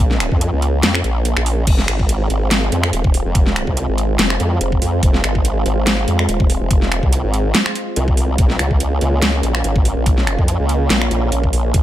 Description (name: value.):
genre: heavy wobble dubstep.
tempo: 143 BPM.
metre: 4/4.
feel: swing 54% on 16ths, half-time.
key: F minor.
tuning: A4 = 440 Hz.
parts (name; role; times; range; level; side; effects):
supersaw pad; sustained chords; 0.0-11.8 s; Ab3 to F5; -24 LUFS; right 2 dB; sidechain pumping, low-pass filter.
formant-sweep wobble bass; bass; 0.0-11.8 s; Eb1 to F2; -18 LUFS; equal; chorus, overdrive.
dubstep drum kit; drums; 0.1-11.8 s; crash cymbal, finger snaps, hi-hat, snare drum; -19 LUFS; equal; small room ambience.
electronic kick drum; drums; 0.3-11.8 s; none; -16 LUFS; equal; small room ambience.
room: digital ambience.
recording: none.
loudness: -14 LUFS.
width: side -13 dB against mid.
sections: 0.0-11.8 A section.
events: kick drops out 1.3-1.7.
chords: 0.0 Bbm; 1.7 Fm; 8.4 Bbm.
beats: 0.41 0.83 1.25 | 1.67 2.09 2.51 2.93 | 3.35 3.77 4.19 4.61 | 5.03 5.45 5.87 6.29 | 6.71 7.13 7.54 7.96 | 8.38 8.80 9.22 9.64 | 10.06 10.48 10.90 11.32 | 11.74.